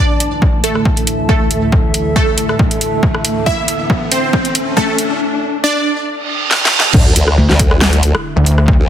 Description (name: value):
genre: heavy wobble dubstep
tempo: 138 BPM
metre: 4/4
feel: swing 54% on 16ths, half-time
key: unclear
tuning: A4 = 441 Hz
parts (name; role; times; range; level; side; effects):
- wide unison pluck; melody; 0.0-6.9 s; A3 to E5; -18 LUFS; right 1 dB; phaser, digital delay
- lush unison pad; sustained chords; 0.0-8.9 s; D2 to E4; -23 LUFS; right 1 dB; chorus, sidechain pumping
- riser, reverse cymbal and sub drop; sound effects; 1.9-8.7 s; none; -20 LUFS; equal; none
- warbly tape-like pad; texture; 0.0-5.2 s; D4 to A5; -24 LUFS; right 1 dB; chorus, built-in reverb, sidechain pumping
- dubstep drum kit; drums; 0.2-8.7 s; crash cymbal, hi-hat, rim click, snare drum; -15 LUFS; equal; high-pass filter on hats, high-pass filter on snare, high-pass filter on cymbals
- electronic kick drum; drums; 0.4-8.8 s; none; -14 LUFS; equal; overdrive
- formant-sweep wobble bass; bass; 6.9-8.9 s; D2; -12 LUFS; equal; chorus, overdrive
- pulsing pluck wobble bass; bass; 7.4-8.8 s; D2; -10 LUFS; equal; chorus, overdrive
room: light reverb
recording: dense, heavily limited modern master, high-pass filter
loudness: -11 LUFS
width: side -10 dB against mid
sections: 0.0-6.9 A section; 6.9-8.9 B section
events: build-up 0.0-6.9; filter sweep on analog synth pad 0.0-6.9; filter sweep 0.0-6.9; riser 1.9-5.2; drum fill 3.5-5.2, 6.5-6.9; reverse cymbal 6.2-6.9; drop 6.9-8.9; impact 6.9-8.7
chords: 0.0 Dsus2